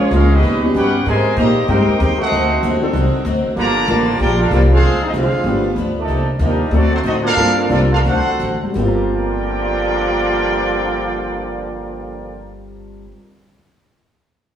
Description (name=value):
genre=jazz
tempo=162-191 BPM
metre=4/4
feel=swing 62% on 8ths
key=G minor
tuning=A4 = 444 Hz
part: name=mellow trumpet section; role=melody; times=0.0-12.5 s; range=G3 to Bb5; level=-20 LUFS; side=equal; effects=none
part: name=clear trombone section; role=second line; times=0.0-12.5 s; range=G2 to G4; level=-21 LUFS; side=right 2 dB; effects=none
part: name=picked acoustic archtop guitar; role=accompaniment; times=0.0-13.2 s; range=G2 to Bb4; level=-25 LUFS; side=left 1 dB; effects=none
part: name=warm grand piano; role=accompaniment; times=0.0-13.3 s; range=G2 to Bb4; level=-22 LUFS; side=left 2 dB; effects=none
part: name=clear saxophone section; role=sustained chords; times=0.0-6.1 s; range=C3 to Bb4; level=-26 LUFS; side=right 1 dB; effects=none
part: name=upright bass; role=bass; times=0.0-13.1 s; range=G1 to Bb2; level=-18 LUFS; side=equal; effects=none
room=wet stone room reverb, RT60 1.3 s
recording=band playing live in one room, studio reverb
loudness=-14 LUFS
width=side -9 dB against mid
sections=0.0-6.1 A section; 6.1-8.8 B section; 8.8-11.7 C section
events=slowing down 6.1-8.8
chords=0.4 Eb7alt; 1.1 Abmaj9; 2.3 D7b9; 3.6 Gm9; 4.8 Dm7b5; 5.5 G7; 6.1 Cm11; 6.7 D7; 7.4 Gm11; 8.0 D7; 8.8 Gm7